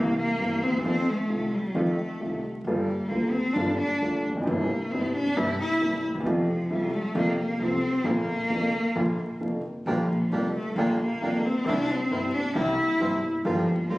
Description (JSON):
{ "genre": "tango", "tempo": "134 BPM", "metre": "4/4", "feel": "rubato", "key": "Bb major", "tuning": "A4 = 436 Hz", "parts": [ { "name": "warm cello", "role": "second line", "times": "0.0-14.0 s", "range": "F3 to E4", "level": "-27 LUFS", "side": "left 1 dB", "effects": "none" }, { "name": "warm concert grand piano", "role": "accompaniment", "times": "0.0-14.0 s", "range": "F1 to G4", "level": "-28 LUFS", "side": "equal", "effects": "none" }, { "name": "upright bass", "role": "bass", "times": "0.0-14.0 s", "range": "E1 to F2", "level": "-36 LUFS", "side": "equal", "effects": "none" }, { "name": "bandoneon", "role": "stabs", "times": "9.9-14.0 s", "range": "G3 to G4", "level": "-34 LUFS", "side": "right 2 dB", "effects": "none" } ], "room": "moderate studio reverb, RT60 0.7 s", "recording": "recorded on a phone in the room, club reverb, vinyl crackle, compression", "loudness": "-24 LUFS", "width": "side -19 dB against mid", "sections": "0.0-14.0 A section", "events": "cello solo 0.0-14.0", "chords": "0.0 C7; 0.8 F7; 2.7 Gm7; 4.5 C7/G; 6.3 F; 8.1 Bb; 9.9 Bb6; 11.7 C7; 13.5 Gm7" }